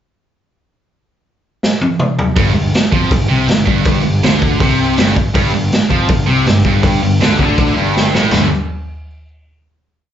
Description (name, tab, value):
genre	punk rock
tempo	161 BPM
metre	4/4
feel	straight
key	unclear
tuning	A4 = 440 Hz
part	raw garage drum kit	drums	1.6-8.4 s	crash cymbal, hi-hat, kick drum, snare drum, toms	-14 LUFS	equal	none
part	sludgy distorted guitar	riff	2.4-8.5 s	G2 to G3	-19 LUFS	left 9 dB	overdrive, slapback echo
part	tight distorted guitar	riff	2.4-8.5 s	G2 to G3	-17 LUFS	right 7 dB	distortion, slapback echo
part	fuzz picked electric bass	bass	2.4-8.5 s	G1 to F2	-19 LUFS	left 1 dB	overdrive
part	distorted electric guitar	riff	5.3-8.5 s	G2 to G3	-19 LUFS	left 2 dB	distortion, slapback echo
room	little or no reverb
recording	live gig heard through the venue's PA, club reverb, nothing above 7.7 kHz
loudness	-11 LUFS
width	side -10 dB against mid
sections	0.9-2.4 pickup bar; 2.4-8.3 riff; 8.3-9.8 final chord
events	drum fill 1.6-2.4, 8.0-8.3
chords	0.9 N.C.; 2.4 G5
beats	| 0.86 1.23 1.61 1.98 | 2.36 2.73 3.11 3.48 | 3.86 4.23 4.60 4.98 | 5.35 5.72 6.09 6.46 | 6.84 7.21 7.58 7.95 | 8.32